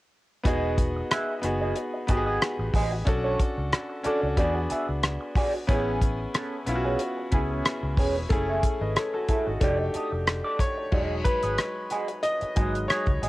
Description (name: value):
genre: lush 1970s-style soul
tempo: 92 BPM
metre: 4/4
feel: swing 54% on 16ths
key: E major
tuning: A4 = 439 Hz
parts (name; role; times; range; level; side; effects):
- bright grand piano; accompaniment; 0.4-13.3 s; F#3 to D#5; -29 LUFS; left 1 dB; cassette tape
- electric guitar through a small old amp; riff; 0.5-13.3 s; A3 to E5; -30 LUFS; right 2 dB; wah, cassette tape
- vintage muted fingered electric bass; bass; 0.5-13.3 s; E1 to E2; -30 LUFS; equal; none
- damped 70s drum kit; drums; 0.5-13.3 s; crash cymbal, hi-hat, kick drum, rim click; -26 LUFS; equal; cassette tape
room: studio ambience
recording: home recording on cassette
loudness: -24 LUFS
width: side -18 dB against mid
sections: 0.4-10.9 A section; 10.9-13.3 B section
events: grand piano solo 10.9-13.3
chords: 0.4 Emaj9; 3.1 Bm9; 4.4 E9; 5.7 Amaj9; 8.3 F#m9; 9.6 F13; 10.9 Emaj9 (rootless)